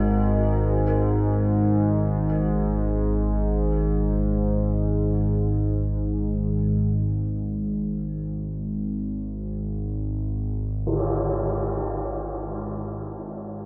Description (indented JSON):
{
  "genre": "dark ambient drone",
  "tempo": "free time",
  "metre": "none",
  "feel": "none",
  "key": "unclear",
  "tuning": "A4 = 439 Hz",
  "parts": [
    { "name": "dark detuned synth bell", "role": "arpeggios", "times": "0.0-13.7 s", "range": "F#4 to A#4", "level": "-38 LUFS", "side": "equal", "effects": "chorus, diffuse ambient delay" },
    { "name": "analog drone", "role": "drone", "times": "0.0-13.7 s", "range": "G#1 to G#2", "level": "-25 LUFS", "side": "equal", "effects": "chorus" },
    { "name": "tam-tam", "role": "percussion", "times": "10.9-11.1 s", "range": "none", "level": "-30 LUFS", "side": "equal", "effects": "low-pass filter on cymbals" }
  ],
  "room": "moderate huge ambient reverb, RT60 8.2 s",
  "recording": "none",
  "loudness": "-25 LUFS",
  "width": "mono",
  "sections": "0.0-13.7 A section",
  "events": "fade-out on synth bell 0.0-13.7; fade-out 10.2-13.7",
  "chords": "0.0 G#sus2"
}